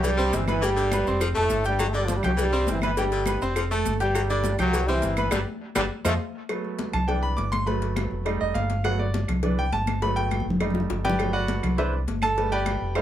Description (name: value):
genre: latin, salsa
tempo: 204 BPM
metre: 4/4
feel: straight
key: G major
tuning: A4 = 436 Hz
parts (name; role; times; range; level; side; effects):
- brilliant trombone section; melody; 0.0-6.1 s; F#2 to E4; -27 LUFS; right 1 dB; none
- edgy baritone saxophone; second line; 0.0-6.1 s; D3 to A3; -30 LUFS; left 3 dB; none
- bright baby grand piano; accompaniment; 0.0-13.0 s; E3 to G6; -27 LUFS; right 2 dB; none
- fingered electric bass; bass; 0.0-13.0 s; F1 to F2; -27 LUFS; equal; none
- congas; percussion; 0.0-13.0 s; none; -31 LUFS; left 2 dB; none
- cowbell and bongos; percussion; 0.0-13.0 s; none; -34 LUFS; left 5 dB; none
- maracas; percussion; 0.0-6.1 s; none; -40 LUFS; right 9 dB; none
- claves; percussion; 0.5-13.0 s; none; -36 LUFS; right 6 dB; none
room: light reverb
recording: none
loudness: -22 LUFS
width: side -11 dB against mid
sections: 0.0-6.5 A section; 6.5-13.0 B section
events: band accent 5.3-6.5; drum fill 6.1-6.5, 10.3-11.2; grand piano solo 6.5-13.0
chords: 0.0 Cmaj7; 0.6 G; 1.2 F; 1.8 G5; 2.4 Cmaj7; 3.0 G; 3.6 F; 4.1 G5; 4.7 Cmaj7; 5.3 G; 5.9 F7(no3); 6.5 Am69; 7.1 Cmaj7; 7.7 Gmaj7; 8.3 F7; 8.8 Gmaj7; 9.4 Cmaj7; 10.0 Gmaj7; 10.6 F7; 11.2 Gmaj7; 11.8 Cmaj7; 12.4 G